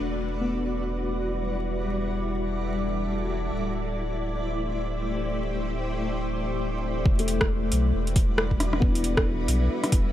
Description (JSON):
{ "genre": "future garage", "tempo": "136 BPM", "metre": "4/4", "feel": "swing 60% on 16ths", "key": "E minor", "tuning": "A4 = 440 Hz", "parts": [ { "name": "granular cloud pad", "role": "sustained chords", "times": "0.0-10.1 s", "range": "G3 to E5", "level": "-29 LUFS", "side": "left 1 dB", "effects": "built-in reverb, sidechain pumping" }, { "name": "warm sub bass", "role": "bass", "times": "0.0-10.1 s", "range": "D1 to B1", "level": "-29 LUFS", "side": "equal", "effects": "sidechain pumping" }, { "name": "felt-muted upright piano", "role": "accompaniment", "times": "0.4-3.5, 7.2-10.1 s", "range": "A3 to E4", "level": "-32 LUFS", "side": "left 2 dB", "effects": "sidechain pumping, low-pass filter, analog delay" }, { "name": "electronic kick drum", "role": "drums", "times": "7.1-10.0 s", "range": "none", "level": "-23 LUFS", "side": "equal", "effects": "overdrive, small room ambience" }, { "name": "deep house drum kit", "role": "drums", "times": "7.2-10.0 s", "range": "hi-hat, rim click", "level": "-27 LUFS", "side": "equal", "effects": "overdrive, low-pass filter on snare, small room ambience, low-pass filter on hats" } ], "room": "light reverb", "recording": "vinyl crackle", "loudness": "-24 LUFS", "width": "side -12 dB against mid", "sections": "0.0-7.1 A section; 7.1-10.1 B section", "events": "filter sweep on felt piano 0.0-7.1", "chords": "0.0 Em9; 3.5 D9sus4; 7.1 Em9", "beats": "| 0.00 0.44 0.88 1.32 | 1.76 2.20 2.64 3.08 | 3.52 3.97 4.41 4.85 | 5.29 5.73 6.17 6.61 | 7.05 7.50 7.94 8.38 | 8.82 9.26 9.70" }